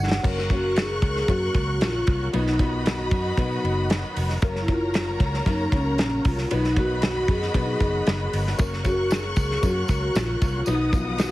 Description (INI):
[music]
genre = uptempo 1960s-style soul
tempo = 115 BPM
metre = 4/4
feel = straight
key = F# major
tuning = A4 = 440 Hz
[part]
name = vibraphone with soft mallets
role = melody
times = 0.0-11.3 s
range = C#4 to F#5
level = -26 LUFS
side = equal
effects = slapback echo
[part]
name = overdriven tonewheel organ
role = sustained chords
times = 0.0-11.3 s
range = C#3 to F#4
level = -35 LUFS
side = equal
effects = slow rotary speaker, chorus vibrato
[part]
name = vintage muted fingered electric bass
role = bass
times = 0.0-11.3 s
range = E#1 to B2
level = -27 LUFS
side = equal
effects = none
[part]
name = natural country drum kit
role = drums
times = 0.1-11.3 s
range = crash cymbal, hi-hat, kick drum, ride cymbal, snare drum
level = -25 LUFS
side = equal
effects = none
[part]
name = warm studio string section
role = second line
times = 0.2-11.3 s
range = F#4 to F#6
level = -31 LUFS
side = left 2 dB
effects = none
[part]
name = dark upright piano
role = accompaniment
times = 0.2-11.3 s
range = E#3 to B4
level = -32 LUFS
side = left 4 dB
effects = none
[part]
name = tambourine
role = percussion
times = 8.6-11.3 s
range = none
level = -42 LUFS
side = right 4 dB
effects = none
[sound]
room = light reverb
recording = heavily compressed radio sound, multiband compression, vinyl crackle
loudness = -21 LUFS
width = side -17 dB against mid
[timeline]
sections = 0.2-11.3 A section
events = drum fill 0.0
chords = 0.2 F#; 2.3 B; 4.4 F#; 6.5 B; 8.6 F#; 10.7 B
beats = | 0.24 0.77 1.29 1.81 | 2.33 2.86 3.38 3.90 | 4.42 4.94 5.47 5.99 | 6.51 7.03 7.55 8.07 | 8.59 9.11 9.63 10.15 | 10.67 11.19